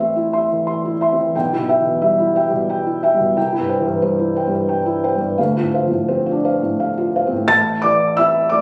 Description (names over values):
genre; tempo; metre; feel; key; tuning
neoclassical minimalist piano; 88 BPM; 3/4; rubato; A minor; A4 = 440 Hz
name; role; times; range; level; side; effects
felt-muted upright piano; solo; 0.0-8.6 s; A1 to A6; -18 LUFS; equal; none
room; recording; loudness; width
light reverb; recorded on a phone in the room, studio reverb, nothing above 10.4 kHz; -18 LUFS; mono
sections
0.0-7.5 A section; 7.5-8.6 B section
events
none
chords
0.0 Am; 1.3 Em/B; 3.4 C; 5.4 Dm7; 7.5 Am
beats
0.67 | 1.34 2.02 2.69 | 3.36 4.02 4.69 | 5.38 6.08 6.79 | 7.50 8.19